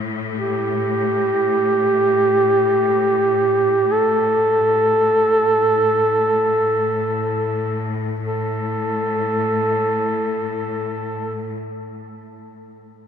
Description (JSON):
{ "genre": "caucasian folk", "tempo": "free time", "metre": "none", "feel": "none", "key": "unclear", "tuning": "A4 = 441 Hz", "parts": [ { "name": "bright symphonic cello section", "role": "drone", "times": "0.0-11.6 s", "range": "A2", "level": "-26 LUFS", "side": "left 3 dB", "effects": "none" }, { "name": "mellow duduk", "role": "melody", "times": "0.4-11.5 s", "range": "G4 to A4", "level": "-17 LUFS", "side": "right 1 dB", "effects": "none" } ], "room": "wet cathedral reverb, RT60 5.7 s", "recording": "minimal, uncompressed stereo recording", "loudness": "-16 LUFS", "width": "side -8 dB against mid", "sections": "0.0-8.2 A section; 8.2-13.1 B section", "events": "slowing down 0.0-8.2", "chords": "none", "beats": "free time" }